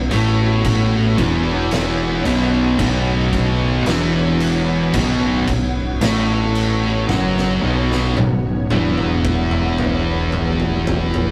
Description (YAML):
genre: stoner and doom metal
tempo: 56 BPM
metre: 4/4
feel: straight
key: unclear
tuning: A4 = 442 Hz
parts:
  - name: string machine, violas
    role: sustained chords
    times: 0.0-11.3 s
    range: B3 to C#5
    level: -30 LUFS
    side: equal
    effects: phaser, ensemble chorus
  - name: growling fingered electric bass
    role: bass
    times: 0.0-11.3 s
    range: B0 to A1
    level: -24 LUFS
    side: equal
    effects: overdrive
  - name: heavy high-gain guitar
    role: riff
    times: 0.1-11.3 s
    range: B1 to A3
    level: -27 LUFS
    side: equal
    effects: distortion
  - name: thick fuzz guitar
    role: riff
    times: 0.1-11.3 s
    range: B1 to A3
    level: -25 LUFS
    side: equal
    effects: distortion
  - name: thick fuzz guitar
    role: riff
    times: 0.1-11.3 s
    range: B1 to A3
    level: -24 LUFS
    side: equal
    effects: distortion
  - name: oversized low-tuned drum kit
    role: drums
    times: 0.1-11.3 s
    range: crash cymbal, kick drum, snare drum, toms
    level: -26 LUFS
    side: equal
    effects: none
room: moderate small room reverb, RT60 0.6 s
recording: rough rehearsal-room recording, tube saturation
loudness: -18 LUFS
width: mono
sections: 0.0-11.3 A section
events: drum fill 7.1-11.3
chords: 0.0 B5